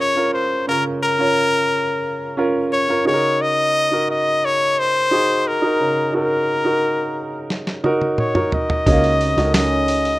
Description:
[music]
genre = piano-driven pop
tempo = 88 BPM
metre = 4/4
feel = straight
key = unclear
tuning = A4 = 440 Hz
[part]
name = clear trumpet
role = melody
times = 0.0-10.2 s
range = Bb4 to Eb5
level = -18 LUFS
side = left 2 dB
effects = none
[part]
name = warm upright piano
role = accompaniment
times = 0.0-10.2 s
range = Db3 to Eb5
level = -21 LUFS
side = right 2 dB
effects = none
[part]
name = dusty soul sampler-style drum kit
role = drums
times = 7.5-10.2 s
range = hi-hat, kick drum, snare drum, toms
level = -22 LUFS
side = equal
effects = none
[part]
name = dark French horn section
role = second line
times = 8.9-10.2 s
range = Bb2 to Db4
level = -23 LUFS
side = right 2 dB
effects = none
[part]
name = vintage muted picked electric bass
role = bass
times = 8.9-10.2 s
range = Db2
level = -22 LUFS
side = equal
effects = none
[sound]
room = light reverb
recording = rough home demo mix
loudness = -16 LUFS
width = side -17 dB against mid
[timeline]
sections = 0.0-10.2 A section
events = drum fill 7.5-8.9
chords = 0.0 Bbm/Db; 3.1 Ebm/Db; 8.9 Gb6

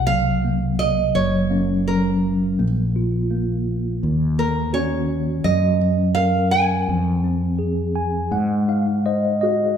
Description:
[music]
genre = acoustic folk-pop ballad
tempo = 84 BPM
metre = 4/4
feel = straight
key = unclear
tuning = A4 = 440 Hz
[part]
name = nylon-string guitar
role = melody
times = 0.0-7.5 s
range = Bb4 to Ab5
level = -22 LUFS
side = right 3 dB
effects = none
[part]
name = mellow tine electric piano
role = accompaniment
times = 0.0-9.8 s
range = C3 to Ab5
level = -22 LUFS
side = equal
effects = medium stereo tremolo
[part]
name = fretless electric bass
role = bass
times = 0.0-9.7 s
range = Gb1 to Ab2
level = -22 LUFS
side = equal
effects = none
[part]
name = felt-muted upright piano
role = arpeggios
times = 1.5-9.8 s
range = Bb3 to Gb4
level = -28 LUFS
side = right 4 dB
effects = none
[sound]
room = wet recital hall reverb, RT60 1.7 s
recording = recorded in a church or concert hall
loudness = -18 LUFS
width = side -8 dB against mid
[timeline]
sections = 0.0-9.8 A section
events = none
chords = 0.0 Cm7b5; 1.1 Gb; 2.6 Bb5; 4.0 Ebm7; 5.5 Gb6; 6.9 Fm; 8.3 Ab7

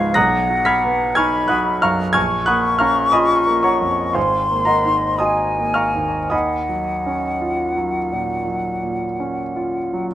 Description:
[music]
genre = classical, impressionist duo for flute and grand piano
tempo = 54-61 BPM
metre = 4/4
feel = rubato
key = Eb minor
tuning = A4 = 439 Hz
[part]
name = hollow concert flute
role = melody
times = 0.0-10.1 s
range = F5 to Db6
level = -20 LUFS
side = left 2 dB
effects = none
[part]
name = clear concert grand piano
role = accompaniment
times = 0.0-10.1 s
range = Ab1 to B6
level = -18 LUFS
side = right 1 dB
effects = none
[sound]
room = light reverb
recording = close, detailed microphones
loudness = -16 LUFS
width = side -12 dB against mid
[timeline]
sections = 0.0-10.1 A section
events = none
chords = 0.2 Bmaj7#11; 2.2 Bbm7; 4.2 Ab9; 6.3 Ebm11

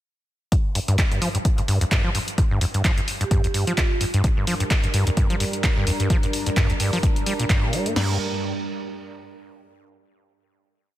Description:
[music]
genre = acid house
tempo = 129 BPM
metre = 4/4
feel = swing 56% on 16ths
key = G minor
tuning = A4 = 443 Hz
[part]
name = acid bass, saw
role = riff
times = 0.5-8.2 s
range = F2 to Bb3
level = -24 LUFS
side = equal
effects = overdrive, sidechain pumping, tape echo
[part]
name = punchy analog drum machine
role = drums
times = 0.5-8.1 s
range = crash cymbal, kick drum, snare drum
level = -22 LUFS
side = equal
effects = none
[part]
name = punchy analog drum machine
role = drums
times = 0.5-7.9 s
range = handclaps, hi-hat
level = -27 LUFS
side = equal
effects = none
[part]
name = vibraphone with medium hard mallets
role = melody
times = 3.2-3.9 s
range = F4 to G4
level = -32 LUFS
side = right 6 dB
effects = digital delay
[part]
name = warm analog pad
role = sustained chords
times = 4.2-8.2 s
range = G3 to Bb4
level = -29 LUFS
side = right 1 dB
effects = chorus, sidechain pumping
[sound]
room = light reverb, digital ambience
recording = dense, heavily limited modern master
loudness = -19 LUFS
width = side -14 dB against mid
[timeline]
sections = 0.5-8.0 groove; 8.0-9.8 final chord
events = filter sweep on acid bass 0.5-8.0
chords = 0.5 Gm

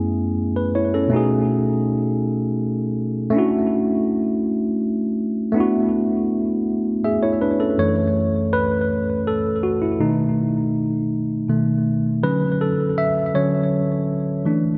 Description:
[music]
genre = R&B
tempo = 54 BPM (dotted quarters)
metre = 6/8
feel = straight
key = unclear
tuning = A4 = 439 Hz
[part]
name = tine electric piano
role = solo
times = 0.0-14.8 s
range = F#2 to E5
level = -20 LUFS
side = equal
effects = delay
[sound]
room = wet plate reverb, RT60 2.8 s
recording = dreamy mix soaked in reverb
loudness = -21 LUFS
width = mono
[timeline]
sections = 0.0-7.8 A section; 7.8-14.8 B section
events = tine electric piano solo 7.8-14.8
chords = 0.0 F#m11; 1.1 B13; 3.3 Dmaj9; 5.6 E9sus4; 7.8 F#m7; 10.0 B7; 12.2 Dmaj7

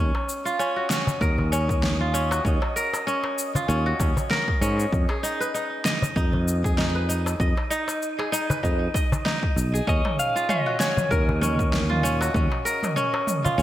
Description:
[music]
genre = organic downtempo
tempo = 97 BPM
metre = 4/4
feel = swing 56% on 16ths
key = Eb minor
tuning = A4 = 440 Hz
[part]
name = kora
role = arpeggios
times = 0.0-13.6 s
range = Db4 to Eb5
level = -26 LUFS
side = equal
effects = digital delay
[part]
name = sustaining fretless electric bass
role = bass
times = 0.0-13.6 s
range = Cb2 to Ab2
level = -24 LUFS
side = equal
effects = sidechain pumping
[part]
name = wind-like tuned noise texture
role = texture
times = 0.4-13.6 s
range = Eb5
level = -36 LUFS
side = right 1 dB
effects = built-in reverb, wide subtle chorus
[part]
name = darbuka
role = percussion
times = 0.1-13.6 s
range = none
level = -30 LUFS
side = left 1 dB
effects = none
[part]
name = deep house drum kit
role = drums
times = 0.3-13.6 s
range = cabasa, snare drum, toms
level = -29 LUFS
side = equal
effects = overdrive, gated reverb
[part]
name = electronic kick drum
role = drums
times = 1.2-12.5 s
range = none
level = -25 LUFS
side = equal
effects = overdrive
[part]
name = electric slide guitar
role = melody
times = 9.9-12.0 s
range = Bb4 to F5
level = -27 LUFS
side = left 1 dB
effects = digital delay
[sound]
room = moderate plate reverb, RT60 1.4 s, digital ambience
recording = bright 1980s-style digital production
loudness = -21 LUFS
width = side -13 dB against mid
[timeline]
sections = 0.0-13.6 A section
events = none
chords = 0.0 Ebm9; 4.9 Fm7b5; 9.9 Ebm9

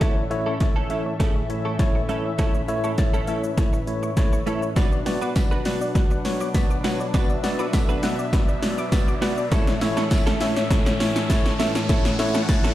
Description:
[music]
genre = dance-pop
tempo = 101 BPM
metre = 4/4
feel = straight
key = unclear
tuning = A4 = 440 Hz
[part]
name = tine electric piano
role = accompaniment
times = 0.0-12.7 s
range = A3 to D5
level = -27 LUFS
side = left 1 dB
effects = fast stereo tremolo, sidechain pumping
[part]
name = warm analog pad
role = sustained chords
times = 0.0-12.7 s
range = A2 to F#5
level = -29 LUFS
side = left 1 dB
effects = lush chorus, sidechain pumping
[part]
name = soft round pluck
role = arpeggios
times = 0.0-12.6 s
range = A4 to B6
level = -34 LUFS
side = left 3 dB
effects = chorus, sidechain pumping, digital delay
[part]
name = direct-recorded clean electric guitar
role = riff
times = 0.0-12.7 s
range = A3 to B4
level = -31 LUFS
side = right 5 dB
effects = analog chorus
[part]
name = punchy analog drum machine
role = drums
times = 0.0-12.7 s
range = hi-hat, kick drum, shaker, snare drum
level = -22 LUFS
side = equal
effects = overdrive
[part]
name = tambourine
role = percussion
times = 4.8-12.6 s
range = none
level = -44 LUFS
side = right 5 dB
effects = none
[part]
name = riser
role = sound effects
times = 6.8-12.7 s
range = none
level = -36 LUFS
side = equal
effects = none
[sound]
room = light reverb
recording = played on a big sound system in a bare room, stone room reverb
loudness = -20 LUFS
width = side -14 dB against mid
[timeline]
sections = 0.0-12.7 A section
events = build-up 0.0-12.7; drum fill 0.0-12.7; riser 6.8-12.7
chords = 0.0 A; 4.8 Bm; 9.5 A

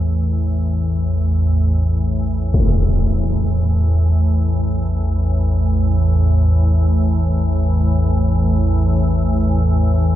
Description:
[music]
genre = dark ambient drone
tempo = free time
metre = none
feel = none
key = unclear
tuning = A4 = 438 Hz
[part]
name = organ-like drone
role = drone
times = 0.0-10.2 s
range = A1 to E2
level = -14 LUFS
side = equal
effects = ensemble chorus, built-in reverb
[part]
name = impact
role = percussion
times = 2.5-2.8 s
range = none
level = -19 LUFS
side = equal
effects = low-pass filter on sfx
[sound]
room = moderate plate reverb, RT60 2.7 s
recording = none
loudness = -14 LUFS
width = side -12 dB against mid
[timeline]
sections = 0.0-10.2 A section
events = none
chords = 0.0 A5

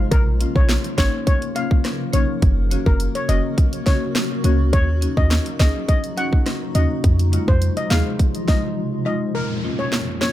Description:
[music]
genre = dancehall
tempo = 104 BPM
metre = 4/4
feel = straight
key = Bb minor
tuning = A4 = 440 Hz
[part]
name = granular cloud pad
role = sustained chords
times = 0.0-10.3 s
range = C3 to Bb4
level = -28 LUFS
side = equal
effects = built-in reverb, sidechain pumping
[part]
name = clean 808-style bass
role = bass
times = 0.0-8.0 s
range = F1 to F2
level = -19 LUFS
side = equal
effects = none
[part]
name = steel pan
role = melody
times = 0.1-10.3 s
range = Bb4 to Gb5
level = -27 LUFS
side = left 2 dB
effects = ping-pong delay
[part]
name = island pop drum kit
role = drums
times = 0.1-10.3 s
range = handclaps, hi-hat, kick drum, rim click, snare drum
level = -19 LUFS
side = equal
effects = none
[part]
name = marimba with medium mallets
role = accompaniment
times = 0.4-10.3 s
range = F2 to Ab4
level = -26 LUFS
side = left 3 dB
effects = none
[part]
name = downlifter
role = sound effects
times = 9.3-10.3 s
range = none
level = -30 LUFS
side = right 2 dB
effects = none
[sound]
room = little or no reverb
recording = none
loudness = -17 LUFS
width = side -13 dB against mid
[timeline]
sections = 0.0-9.3 A section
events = break 8.8-9.3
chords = 0.1 Bbm; 2.4 Gb; 4.7 Ebm7; 7.0 Fm7; 9.3 Bbm

